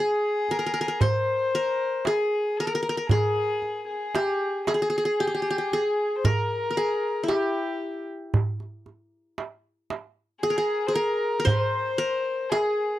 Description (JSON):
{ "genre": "Arabic maqam ensemble", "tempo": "115 BPM (eighths)", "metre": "10/8", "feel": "straight", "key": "unclear", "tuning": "A4 = 443 Hz", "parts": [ { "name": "qanun", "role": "melody", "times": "0.0-13.0 s", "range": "E4 to C5", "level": "-25 LUFS", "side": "equal", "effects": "none" }, { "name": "dark violin", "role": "second line", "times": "0.0-13.0 s", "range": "G4 to C5", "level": "-29 LUFS", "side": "left 4 dB", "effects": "none" }, { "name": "darbuka", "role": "percussion", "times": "0.5-12.8 s", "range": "none", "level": "-25 LUFS", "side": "right 2 dB", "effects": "none" } ], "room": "light reverb", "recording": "dry, close 1970s-style studio recording", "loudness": "-23 LUFS", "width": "side -14 dB against mid", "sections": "0.0-13.0 A section", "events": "none", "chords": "none" }